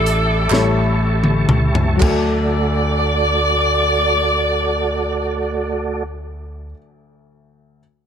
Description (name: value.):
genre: slow gospel.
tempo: 37-45 BPM (dotted quarters).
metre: 6/8.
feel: straight.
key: D major.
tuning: A4 = 441 Hz.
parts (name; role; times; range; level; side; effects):
bright saxophone section; melody; 0.0-6.0 s; D4 to D5; -19 LUFS; equal; none.
clear upright piano; accompaniment; 0.0-7.8 s; D2 to C#5; -24 LUFS; left 5 dB; none.
tonewheel organ; sustained chords; 0.0-6.0 s; A3 to D6; -23 LUFS; right 4 dB; slow rotary speaker, chorus vibrato.
fingered electric bass; bass; 0.0-6.7 s; A1 to D2; -21 LUFS; equal; none.
crisp fusion drum kit; drums; 0.1-2.3 s; crash cymbal, hi-hat, kick drum, snare drum, toms; -18 LUFS; left 1 dB; none.
group handclap; percussion; 0.5-2.5 s; none; -26 LUFS; right 5 dB; none.
room: light reverb.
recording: none.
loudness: -15 LUFS.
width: side -8 dB against mid.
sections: 0.0-2.0 A section; 2.0-5.3 B section.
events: slowing down 0.0-2.0; drum fill 0.5-2.0.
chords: 0.0 A7sus4; 0.5 A7; 2.0 D.